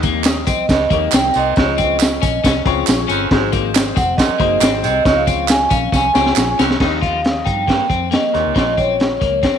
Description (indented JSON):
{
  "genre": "uptempo 1960s-style soul",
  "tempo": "137 BPM",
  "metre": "4/4",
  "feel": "straight",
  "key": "Eb mixolydian",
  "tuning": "A4 = 440 Hz",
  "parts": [
    { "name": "clear upright piano", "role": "accompaniment", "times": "0.0-9.2 s", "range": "Db4 to Eb5", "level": "-24 LUFS", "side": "left 12 dB", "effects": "none" },
    { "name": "electric guitar at the edge of break-up", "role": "riff", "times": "0.0-9.6 s", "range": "Bb3 to F4", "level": "-22 LUFS", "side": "left 12 dB", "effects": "wide subtle chorus" },
    { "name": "vintage muted fingered electric bass", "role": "bass", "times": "0.0-9.5 s", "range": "F1 to G2", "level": "-24 LUFS", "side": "equal", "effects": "none" },
    { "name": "crunchy breakbeat drum kit", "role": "drums", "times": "0.0-9.5 s", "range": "crash cymbal, hi-hat, kick drum, snare drum", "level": "-17 LUFS", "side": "equal", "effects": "none" },
    { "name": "tambourine and handclaps", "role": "percussion", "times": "0.0-6.7 s", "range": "none", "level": "-25 LUFS", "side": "right 12 dB", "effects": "none" },
    { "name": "vibraphone with soft mallets", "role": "melody", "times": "0.5-9.6 s", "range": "Db5 to Ab5", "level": "-18 LUFS", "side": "right 2 dB", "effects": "none" },
    { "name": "raspy baritone saxophone", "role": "riff", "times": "0.7-8.7 s", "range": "Eb2 to C3", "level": "-25 LUFS", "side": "right 12 dB", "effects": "none" }
  ],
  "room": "moderate echo chamber reverb, RT60 1.4 s, small room ambience",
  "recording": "1960s-style stereo with parts hard left and right",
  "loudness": "-13 LUFS",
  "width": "side -8 dB against mid",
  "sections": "0.0-6.8 A section; 6.8-9.6 B section",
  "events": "drum fill 5.9-6.8",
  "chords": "0.0 Eb; 1.6 Db; 3.3 Ab7; 5.1 Db; 6.8 Eb; 8.6 Bbmadd9"
}